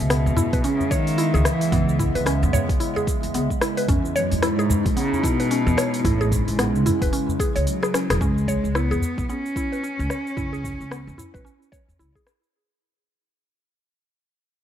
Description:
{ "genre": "organic downtempo", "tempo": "111 BPM", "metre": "4/4", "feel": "swing 59% on 16ths", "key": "C# minor", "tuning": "A4 = 440 Hz", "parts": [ { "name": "dark cello", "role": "melody", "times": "0.0-12.0 s", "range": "F#2 to C#4", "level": "-25 LUFS", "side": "equal", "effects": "digital delay" }, { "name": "warbly tape-like pad", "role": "sustained chords", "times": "0.0-8.2 s", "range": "B2 to E5", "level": "-28 LUFS", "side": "right 1 dB", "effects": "chorus, built-in reverb, sidechain pumping" }, { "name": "upright bass", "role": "bass", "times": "0.0-12.1 s", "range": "E1 to G#2", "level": "-24 LUFS", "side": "equal", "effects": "sidechain pumping" }, { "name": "deep house drum kit", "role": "drums", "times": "0.0-12.5 s", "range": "cabasa, hi-hat, rim click, toms", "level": "-27 LUFS", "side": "left 1 dB", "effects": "none" }, { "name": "mallet-like synth pluck", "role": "arpeggios", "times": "0.1-12.2 s", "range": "B3 to C#5", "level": "-27 LUFS", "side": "equal", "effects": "chorus, digital delay" }, { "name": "udu", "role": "percussion", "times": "0.4-11.3 s", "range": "none", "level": "-27 LUFS", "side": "left 1 dB", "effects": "none" }, { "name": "electronic kick drum", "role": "drums", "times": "0.5-12.2 s", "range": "none", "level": "-25 LUFS", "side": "equal", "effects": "none" } ], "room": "light reverb", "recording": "dark, warm production", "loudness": "-19 LUFS", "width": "side -10 dB against mid", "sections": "0.0-8.2 A section; 8.2-12.5 B section", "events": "kick drops out 7.7-8.2; drum fill 7.8-8.2; fade-out 8.2-12.5", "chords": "0.0 C#m7; 3.9 Emaj7; 6.0 Amaj7; 8.2 C#m7", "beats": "0.10 0.64 1.18 | 1.72 2.26 2.80 3.34 | 3.88 4.42 4.96 5.50 | 6.04 6.59 7.13 7.67 | 8.21 8.75 9.29 9.83 | 10.37 10.91 11.45 11.99" }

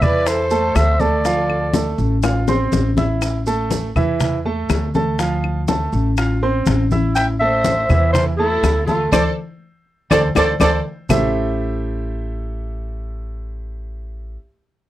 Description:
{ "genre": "latin, Cuban son and guajira", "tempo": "122 BPM", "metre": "4/4", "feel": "straight", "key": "A minor", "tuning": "A4 = 443 Hz", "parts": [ { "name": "growling clarinet", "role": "melody", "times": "0.0-2.0, 7.2-10.7 s", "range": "A4 to G5", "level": "-19 LUFS", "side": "equal", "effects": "none" }, { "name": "warm studio violin section", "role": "second line", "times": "0.0-2.0, 7.2-10.8 s", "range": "E4 to E5", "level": "-24 LUFS", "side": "right 2 dB", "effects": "none" }, { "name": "clear baby grand piano", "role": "arpeggios", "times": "0.0-14.4 s", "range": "E3 to F6", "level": "-22 LUFS", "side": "right 3 dB", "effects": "none" }, { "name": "upright bass", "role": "bass", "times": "0.0-14.4 s", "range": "A1 to E2", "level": "-20 LUFS", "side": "equal", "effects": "none" }, { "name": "claves", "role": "percussion", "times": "0.0-11.2 s", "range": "none", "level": "-27 LUFS", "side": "left 11 dB", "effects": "none" }, { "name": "congas", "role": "percussion", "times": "0.0-11.2 s", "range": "none", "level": "-23 LUFS", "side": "left 1 dB", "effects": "none" }, { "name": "maracas", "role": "percussion", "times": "0.0-11.2 s", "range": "none", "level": "-34 LUFS", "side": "right 7 dB", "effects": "none" }, { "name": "bongos", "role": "percussion", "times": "0.3-11.2 s", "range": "none", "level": "-25 LUFS", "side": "left 7 dB", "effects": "none" } ], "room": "little or no reverb", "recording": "dry, close 1970s-style studio recording", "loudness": "-16 LUFS", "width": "side -14 dB against mid", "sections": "0.0-11.1 A section; 11.1-14.9 B section", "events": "drum fill 2.2-3.2, 10.4-11.1; band accent 9.1-11.1", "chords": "0.0 Am; 1.2 Dm7; 3.2 A5; 5.2 Dm7; 7.2 Am; 9.1 D5; 11.1 Am7", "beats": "0.26 0.76 | 1.25 1.74 2.23 2.73 | 3.22 3.71 4.20 4.70 | 5.19 5.68 6.17 6.67 | 7.16 7.65 8.14 8.64 | 9.13 9.62 10.11 10.61 | 11.10 11.59 12.08 12.57 | 13.06 13.56 14.05" }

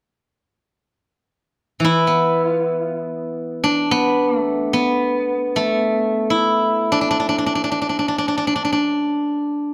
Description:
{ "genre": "chinese traditional, Chinese solo plucked strings", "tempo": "free time", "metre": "none", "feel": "none", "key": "unclear", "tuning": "A4 = 439 Hz", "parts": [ { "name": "steel-string zither", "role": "solo", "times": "1.8-9.7 s", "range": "E3 to E4", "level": "-19 LUFS", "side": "equal", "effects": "none" } ], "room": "light reverb", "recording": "close, detailed microphones", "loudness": "-19 LUFS", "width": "mono", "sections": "1.0-9.7 A section", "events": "none", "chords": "none", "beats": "free time" }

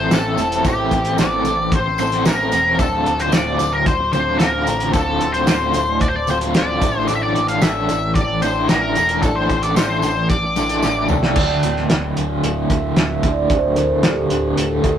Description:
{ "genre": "psychedelic rock", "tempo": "112 BPM", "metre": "4/4", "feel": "straight", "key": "D minor", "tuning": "A4 = 440 Hz", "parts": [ { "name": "octave-fuzz lead guitar", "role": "melody", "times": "0.0-11.1 s", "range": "G4 to F5", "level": "-20 LUFS", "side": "left 2 dB", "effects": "wah, distortion" }, { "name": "glass harmonica", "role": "sustained chords", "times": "0.0-15.0 s", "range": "G4 to E6", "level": "-25 LUFS", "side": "right 2 dB", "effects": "none" }, { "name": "overdriven semi-hollow guitar", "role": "riff", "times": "0.0-15.0 s", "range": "D2 to A4", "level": "-21 LUFS", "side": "equal", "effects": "tremolo" }, { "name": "growling picked electric bass", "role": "bass", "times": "0.0-15.0 s", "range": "D1 to C2", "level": "-26 LUFS", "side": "equal", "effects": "overdrive" }, { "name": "cloth-damped thuddy drum kit", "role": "drums", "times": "0.1-15.0 s", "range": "crash cymbal, hi-hat, kick drum, snare drum, toms", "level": "-20 LUFS", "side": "equal", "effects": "none" }, { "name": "tambourine", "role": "percussion", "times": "0.1-11.2 s", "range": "none", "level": "-36 LUFS", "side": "right 7 dB", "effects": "none" }, { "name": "swarming drone", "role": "drone", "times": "13.5-15.0 s", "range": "D2", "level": "-34 LUFS", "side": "left 2 dB", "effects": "none" } ], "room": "moderate studio reverb, RT60 0.6 s", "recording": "rough rehearsal-room recording", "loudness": "-15 LUFS", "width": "side -9 dB against mid", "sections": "0.0-11.4 A section; 11.4-15.0 B section", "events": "drum fill 10.8-11.4; glass harmonica solo 11.4-15.0", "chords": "0.0 Am7; 2.8 Dm7; 6.8 A7sus4; 11.4 D5", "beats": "0.11 | 0.65 1.18 1.72 2.25 | 2.79 3.33 3.86 4.40 | 4.93 5.47 6.01 6.54 | 7.08 7.62 8.15 8.69 | 9.23 9.76 10.30 10.83 | 11.37 11.90 12.44 12.97 | 13.51 14.04 14.57" }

